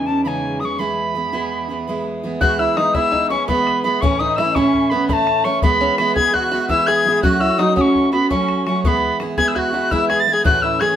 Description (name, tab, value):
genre	celtic folk, Celtic slip jig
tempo	112 BPM (dotted quarters)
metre	9/8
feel	straight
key	E major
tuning	A4 = 441 Hz
part	reedy wooden whistle	melody	0.0-11.0 s	G#5 to A6	-18 LUFS	left 1 dB	none
part	picked steel-string acoustic guitar	accompaniment	0.0-11.0 s	A2 to F#4	-20 LUFS	right 2 dB	none
part	rich cello	drone	0.0-2.4 s	E2	-34 LUFS	left 2 dB	none
part	musette accordion	second line	2.4-11.0 s	A3 to G#4	-26 LUFS	left 4 dB	none
part	open-back banjo	second line	2.4-11.0 s	A3 to G#4	-24 LUFS	right 1 dB	none
part	bodhran	percussion	2.4-10.9 s	none	-23 LUFS	left 2 dB	none
room	wet studio reverb, RT60 0.7 s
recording	band playing live in one room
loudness	-15 LUFS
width	side -10 dB against mid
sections	0.0-2.4 A section; 2.4-11.0 B section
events	none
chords	0.0 C#madd9; 0.8 E; 4.0 A; 5.6 E; 7.2 F#m; 8.8 E; 10.4 A